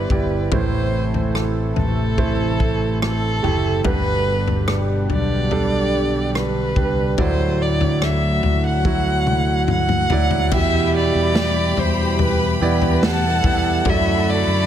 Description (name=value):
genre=pop ballad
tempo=72 BPM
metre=4/4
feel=straight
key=unclear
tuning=A4 = 441 Hz
part: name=dark violin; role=melody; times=0.0-14.7 s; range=A4 to F#5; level=-24 LUFS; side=equal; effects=none
part: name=clear concert grand piano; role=accompaniment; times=0.0-14.7 s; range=G2 to F#5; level=-24 LUFS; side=right 6 dB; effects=none
part: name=warm analog pad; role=sustained chords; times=0.0-14.7 s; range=B2 to A4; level=-25 LUFS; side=left 1 dB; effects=chorus
part: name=fretless electric bass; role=bass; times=0.0-14.7 s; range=F#1 to F#2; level=-22 LUFS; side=left 1 dB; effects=none
part: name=natural country drum kit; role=drums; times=0.1-14.1 s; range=crash cymbal, kick drum, rim click, snare drum, toms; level=-23 LUFS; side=left 1 dB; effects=none
part: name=warm studio violin section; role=second line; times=10.5-14.7 s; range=G4 to B5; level=-26 LUFS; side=left 2 dB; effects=none
room=studio reverb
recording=none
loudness=-16 LUFS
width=side -10 dB against mid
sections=0.0-10.5 A section; 10.5-14.7 B section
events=drum fill 8.9-10.5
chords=0.0 Em7; 0.5 Am; 3.9 G; 7.2 Dadd9; 10.5 Em; 13.9 Dadd9/F#